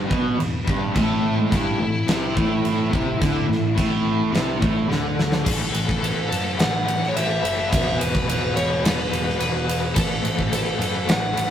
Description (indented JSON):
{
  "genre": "hard rock",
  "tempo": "107 BPM",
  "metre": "4/4",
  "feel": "straight",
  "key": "unclear",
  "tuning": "A4 = 439 Hz",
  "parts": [
    { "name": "crunchy overdriven guitar", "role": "riff", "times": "0.0-5.4 s", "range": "E2 to D3", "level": "-23 LUFS", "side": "right 2 dB", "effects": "none" },
    { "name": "overdriven electric guitar", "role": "riff", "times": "0.0-11.5 s", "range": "E2 to A3", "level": "-28 LUFS", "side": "left 4 dB", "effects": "tremolo" },
    { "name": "picked electric bass", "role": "bass", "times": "0.0-11.5 s", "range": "E1 to F#2", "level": "-28 LUFS", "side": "equal", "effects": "none" },
    { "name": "huge arena drum kit", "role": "drums", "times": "0.1-11.5 s", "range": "crash cymbal, kick drum, ride cymbal, snare drum", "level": "-23 LUFS", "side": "equal", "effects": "none" },
    { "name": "smooth overdriven lead guitar", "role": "melody", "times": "1.0-11.5 s", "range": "A3 to F#5", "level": "-26 LUFS", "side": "left 2 dB", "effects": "none" }
  ],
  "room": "moderate stone room reverb, RT60 1.1 s",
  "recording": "rough rehearsal-room recording, tube saturation",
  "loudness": "-19 LUFS",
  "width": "side -10 dB against mid",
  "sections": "0.0-5.5 A section; 5.5-11.5 B section",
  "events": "drum fill 4.9-5.5",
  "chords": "0.0 E5; 0.9 A5; 7.7 E5; 10.0 A5"
}